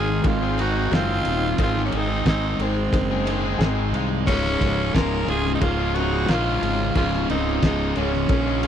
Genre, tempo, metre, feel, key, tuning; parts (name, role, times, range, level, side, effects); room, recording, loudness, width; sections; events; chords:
classic rock; 90 BPM; 4/4; straight; Db major; A4 = 440 Hz
growling tenor saxophone; melody; 0.0-8.7 s; C4 to Bb4; -26 LUFS; equal
lightly driven lead guitar; second line; 0.0-8.7 s; Ab3 to F4; -33 LUFS; right 2 dB
honky-tonk upright piano; accompaniment; 0.0-8.7 s; Gb3 to Ab5; -34 LUFS; left 4 dB
bright tonewheel organ; sustained chords; 0.0-8.7 s; Db3 to F5; -38 LUFS; equal
distorted electric guitar; riff; 0.0-8.7 s; Db2 to Ab3; -29 LUFS; right 16 dB; distortion
overdriven semi-hollow guitar; riff; 0.0-8.7 s; Db2 to Ab4; -28 LUFS; left 14 dB
fuzz fingered electric bass; bass; 0.0-8.7 s; Db1 to C2; -25 LUFS; equal; overdrive
cloth-damped thuddy drum kit; drums; 0.2-8.7 s; crash cymbal, kick drum, ride cymbal, snare drum; -26 LUFS; equal
cowbell; percussion; 0.2-8.7 s; -37 LUFS; left 26 dB
overdriven electric guitar; riff; 4.3-8.7 s; Db2 to Db3; -30 LUFS; equal
little or no reverb; dry, close 1970s-style studio recording; -19 LUFS; side -9 dB against mid
0.0-8.7 A section
honky-tonk piano fill 3.3-4.3
0.0 Ab; 4.3 Db